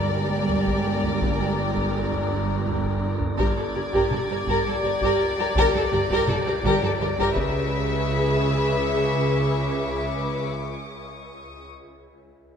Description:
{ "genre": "cinematic, suspense film score", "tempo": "83 BPM", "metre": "3/4", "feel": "straight", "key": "unclear", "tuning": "A4 = 438 Hz", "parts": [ { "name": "warm symphonic violin section", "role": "melody", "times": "0.0-10.5 s", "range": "D5 to E5", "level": "-31 LUFS", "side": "left 4 dB", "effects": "none" }, { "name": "warm studio violin section", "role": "second line", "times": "0.0-10.5 s", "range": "A4 to B4", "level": "-28 LUFS", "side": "left 4 dB", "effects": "none" }, { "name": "dark symphonic viola section", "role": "accompaniment", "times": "0.0-10.5 s", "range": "G3 to G#4", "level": "-27 LUFS", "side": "right 1 dB", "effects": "none" }, { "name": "wind-like tuned noise texture", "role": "sustained chords", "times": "0.0-10.5 s", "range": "G4 to B5", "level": "-33 LUFS", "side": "left 3 dB", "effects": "built-in reverb" }, { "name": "dark chamber double bass section", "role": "bass", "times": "0.0-10.5 s", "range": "G1 to C#2", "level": "-30 LUFS", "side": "right 4 dB", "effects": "none" }, { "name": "warm chamber cello section", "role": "bass", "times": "0.0-10.5 s", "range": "G2 to C#3", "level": "-29 LUFS", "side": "right 3 dB", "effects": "none" }, { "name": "swarming drone", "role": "drone", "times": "0.0-10.5 s", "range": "G1 to C#2", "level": "-33 LUFS", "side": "equal", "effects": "built-in reverb" }, { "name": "warm symphonic violin section", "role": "texture", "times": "0.0-11.7 s", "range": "G5 to G#6", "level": "-36 LUFS", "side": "left 4 dB", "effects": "none" }, { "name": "taiko ensemble", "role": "drums", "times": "0.5-8.8 s", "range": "none", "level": "-30 LUFS", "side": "equal", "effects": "none" }, { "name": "mellow French horn section", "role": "sustained chords", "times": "1.2-1.5 s", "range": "Bb3 to D4", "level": "-37 LUFS", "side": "left 5 dB", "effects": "none" } ], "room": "wet scoring stage reverb, RT60 1.5 s", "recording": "dark, warm production", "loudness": "-21 LUFS", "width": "side -7 dB against mid", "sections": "0.0-3.4 A section; 3.4-7.7 B section; 7.7-12.1 C section", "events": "none", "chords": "0.0 Gm; 7.4 C#m7" }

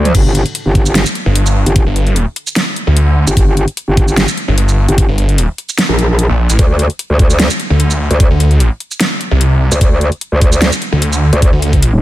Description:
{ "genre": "heavy wobble dubstep", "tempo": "149 BPM", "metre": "4/4", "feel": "swing 53% on 16ths, half-time", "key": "unclear", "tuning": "A4 = 440 Hz", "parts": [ { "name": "metallic wobble bass", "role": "bass", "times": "0.0-12.0 s", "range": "Eb1 to D2", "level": "-12 LUFS", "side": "equal", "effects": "chorus, overdrive" }, { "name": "dubstep drum kit", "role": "drums", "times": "0.1-11.9 s", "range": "crash cymbal, hi-hat, shaker, snare drum, toms", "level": "-16 LUFS", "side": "equal", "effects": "overdrive" }, { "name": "electronic kick drum", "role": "drums", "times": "0.1-11.8 s", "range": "none", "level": "-11 LUFS", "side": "equal", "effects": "none" }, { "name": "snarling distorted saw bass", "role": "bass", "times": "1.3-11.9 s", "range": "G1 to D2", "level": "-10 LUFS", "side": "equal", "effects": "overdrive" } ], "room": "little or no reverb", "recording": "none", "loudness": "-10 LUFS", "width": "side -15 dB against mid", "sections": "0.1-12.0 A section", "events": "drop 0.1-12.0", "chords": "0.1 N.C.; 6.6 D5" }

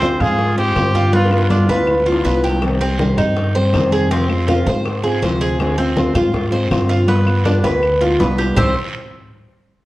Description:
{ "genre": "latin, Cuban son and guajira", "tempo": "161 BPM", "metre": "4/4", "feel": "straight", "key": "C harmonic minor", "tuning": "A4 = 440 Hz", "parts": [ { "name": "clear trumpet", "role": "melody", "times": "0.0-2.0 s", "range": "F4 to C5", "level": "-20 LUFS", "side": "equal", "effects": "none" }, { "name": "nylon-string guitar", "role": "accompaniment", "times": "0.0-8.7 s", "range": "C3 to G4", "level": "-19 LUFS", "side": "left 1 dB", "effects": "none" }, { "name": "Cuban tres", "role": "arpeggios", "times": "0.0-8.7 s", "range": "B3 to C5", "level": "-20 LUFS", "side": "right 1 dB", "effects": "none" }, { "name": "upright bass", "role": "bass", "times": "0.0-8.7 s", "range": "C2 to Ab2", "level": "-19 LUFS", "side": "equal", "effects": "none" }, { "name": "bongos", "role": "percussion", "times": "0.0-8.7 s", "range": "none", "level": "-25 LUFS", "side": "left 2 dB", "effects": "none" }, { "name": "congas", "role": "percussion", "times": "0.0-8.7 s", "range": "none", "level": "-25 LUFS", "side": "equal", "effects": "none" }, { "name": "guiro", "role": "percussion", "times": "0.0-8.7 s", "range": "none", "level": "-33 LUFS", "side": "right 3 dB", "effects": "none" }, { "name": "claves", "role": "percussion", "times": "0.2-8.7 s", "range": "none", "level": "-35 LUFS", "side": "left 4 dB", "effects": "none" } ], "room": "moderate large studio reverb, RT60 1.4 s", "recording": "worn, warbling old tape, cassette tape, warbly pitch drift", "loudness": "-14 LUFS", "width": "side -17 dB against mid", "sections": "0.0-2.6 A section; 2.6-8.6 B section; 8.6-9.8 C section", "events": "drum fill 1.1-2.6, 7.5-8.6", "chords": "0.0 Dm7b5; 1.1 G7; 2.6 Cm; 4.1 Fm; 5.6 Dm7b5; 7.1 G7; 8.6 C5" }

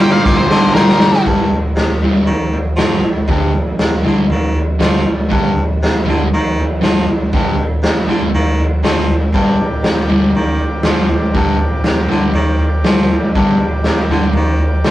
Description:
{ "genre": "garage rock duo or trio", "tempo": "119 BPM", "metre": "4/4", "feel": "straight", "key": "G minor", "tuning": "A4 = 443 Hz", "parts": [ { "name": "octave-fuzz lead guitar", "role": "melody", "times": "0.0-1.2 s", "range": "Bb4 to G5", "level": "-15 LUFS", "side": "left 2 dB", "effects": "distortion" }, { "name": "combo organ", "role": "sustained chords", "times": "0.0-1.2, 9.3-14.9 s", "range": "G4 to D5", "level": "-25 LUFS", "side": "equal", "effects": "none" }, { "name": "fuzz guitar", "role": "riff", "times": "0.0-14.9 s", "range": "G2 to G3", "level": "-16 LUFS", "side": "equal", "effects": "distortion" }, { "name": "clear baritone saxophone", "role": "bass", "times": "0.0-14.9 s", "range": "G2 to F3", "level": "-20 LUFS", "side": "equal", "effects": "tube saturation" }, { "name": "raw garage drum kit", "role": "drums", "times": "0.0-14.9 s", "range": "kick drum, ride cymbal, snare drum, toms", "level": "-14 LUFS", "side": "equal", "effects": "none" } ], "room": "moderate small room reverb, RT60 0.5 s", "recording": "rough rehearsal-room recording, warm saturation", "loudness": "-12 LUFS", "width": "side -14 dB against mid", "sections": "0.0-1.3 A section; 1.3-14.9 B section", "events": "drum fill 0.3-1.3", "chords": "0.0 Gm" }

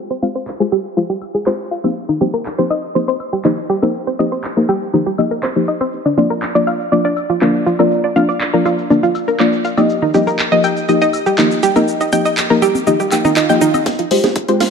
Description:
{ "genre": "progressive house", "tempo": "121 BPM", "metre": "4/4", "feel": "straight", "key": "F dorian", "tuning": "A4 = 441 Hz", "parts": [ { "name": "deep mellow chord stab", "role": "stabs", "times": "0.0-14.7 s", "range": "F3 to G5", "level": "-16 LUFS", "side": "left 2 dB", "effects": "chorus, vintage 12-bit sampler grit, sidechain pumping, tape echo" }, { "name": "analog pluck", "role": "arpeggios", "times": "0.1-14.6 s", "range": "D4 to G5", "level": "-17 LUFS", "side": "right 1 dB", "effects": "chorus, sidechain pumping, tape echo" }, { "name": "house drum kit", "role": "drums", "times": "0.2-14.7 s", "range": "handclaps, hi-hat, shaker, snare drum", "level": "-23 LUFS", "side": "right 1 dB", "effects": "none" }, { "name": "congas and woodblock", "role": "percussion", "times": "0.2-13.8 s", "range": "none", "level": "-26 LUFS", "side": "left 2 dB", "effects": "sidechain pumping on perc" }, { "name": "swell and riser", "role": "sound effects", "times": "13.1-14.7 s", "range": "none", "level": "-26 LUFS", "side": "left 1 dB", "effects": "none" }, { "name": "electronic kick drum", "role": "drums", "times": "13.9-14.5 s", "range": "none", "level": "-23 LUFS", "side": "equal", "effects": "high-pass filter on kick, high-pass filter on room" } ], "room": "moderate lush hall reverb, RT60 2.1 s", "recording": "low-pass filter", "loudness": "-13 LUFS", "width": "side -6 dB against mid", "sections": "0.0-13.9 A section", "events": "filter sweep on synth arpeggio sound 0.0-13.9; filter sweep on synth stab 0.0-13.9; filter sweep 0.0-13.9; swell 13.1-13.9; drum fill 13.9-14.7", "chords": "0.0 Fmadd9; 2.0 Cm7; 5.9 Bb; 9.9 Eb; 13.9 Fmadd9" }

